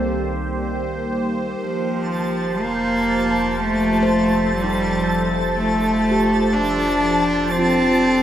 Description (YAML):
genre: ambient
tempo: 61 BPM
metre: 4/4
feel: straight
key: unclear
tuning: A4 = 438 Hz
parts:
  - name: evolving wavetable pad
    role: sustained chords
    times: 0.0-8.2 s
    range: Eb3 to C5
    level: -24 LUFS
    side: right 1 dB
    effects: phaser, built-in reverb
  - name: handpan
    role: arpeggios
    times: 0.0-8.2 s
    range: G3 to C5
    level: -28 LUFS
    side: equal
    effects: tape echo
  - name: round analog bass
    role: bass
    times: 0.0-8.2 s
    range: F1 to C2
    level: -32 LUFS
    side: equal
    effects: none
  - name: clear cello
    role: melody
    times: 1.6-8.2 s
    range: F3 to D4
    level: -19 LUFS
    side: equal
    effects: none
  - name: twinkling granular texture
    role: texture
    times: 2.1-8.2 s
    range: A5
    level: -25 LUFS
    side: right 1 dB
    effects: built-in reverb
room: wet huge ambient reverb, RT60 7.2 s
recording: none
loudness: -17 LUFS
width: side -11 dB against mid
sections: 0.0-8.2 A section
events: none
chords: 0.0 Cm7; 1.6 Fadd9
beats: 0.63 | 1.61 2.59 3.58 4.56 | 5.54 6.53 7.51